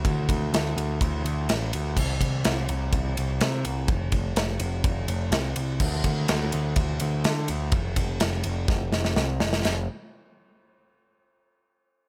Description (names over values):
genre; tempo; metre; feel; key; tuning
classic rock; 125 BPM; 4/4; straight; F major; A4 = 444 Hz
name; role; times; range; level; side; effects
growling picked electric bass; bass; 0.0-9.9 s; F1 to D3; -29 LUFS; equal; overdrive
big rock drum kit; drums; 0.0-9.8 s; crash cymbal, kick drum, ride cymbal, snare drum; -29 LUFS; equal; none
room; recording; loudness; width
little or no reverb; none; -26 LUFS; mono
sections
0.0-9.6 A section; 9.6-11.6 B section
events
drum fill 8.7-9.6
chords
none